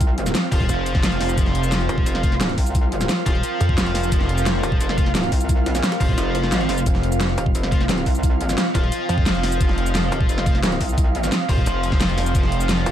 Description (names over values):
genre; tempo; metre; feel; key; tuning
dark technical drum and bass; 175 BPM; 4/4; straight; unclear; A4 = 440 Hz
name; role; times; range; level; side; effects
deep dark ambient pad; sustained chords; 0.0-12.9 s; C4 to F5; -27 LUFS; equal; chorus, built-in reverb, sidechain pumping
metallic wobble bass; bass; 0.0-12.9 s; Eb1 to C2; -24 LUFS; equal; chorus
dubstep drum kit; drums; 0.0-12.9 s; cabasa, hi-hat, snare drum; -24 LUFS; equal; none
electronic kick drum; drums; 0.0-12.4 s; none; -20 LUFS; equal; overdrive
jungle sampler-style drum kit; drums; 0.0-12.9 s; hi-hat, snare drum; -35 LUFS; left 1 dB; none
airy breathy pad; texture; 0.0-12.9 s; F5; -30 LUFS; right 4 dB; chorus, sidechain pumping
scooped high-gain guitar; stabs; 0.5-12.9 s; F4 to F5; -29 LUFS; left 2 dB; distortion, dub echo
snarling distorted saw bass; bass; 0.7-4.6, 6.9-12.8 s; F1 to F2; -22 LUFS; equal; distortion, overdrive
room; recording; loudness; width
little or no reverb; dark, warm production; -17 LUFS; side -11 dB against mid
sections
0.0-12.9 A section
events
kick drops out 6.2-6.9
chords
0.0 F5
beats
| 0.01 0.35 0.69 1.03 | 1.38 1.72 2.06 2.41 | 2.75 3.09 3.44 3.78 | 4.12 4.46 4.81 5.15 | 5.49 5.83 6.18 6.52 | 6.86 7.21 7.55 7.89 | 8.23 8.58 8.92 9.26 | 9.61 9.95 10.29 10.63 | 10.98 11.32 11.66 12.01 | 12.35 12.69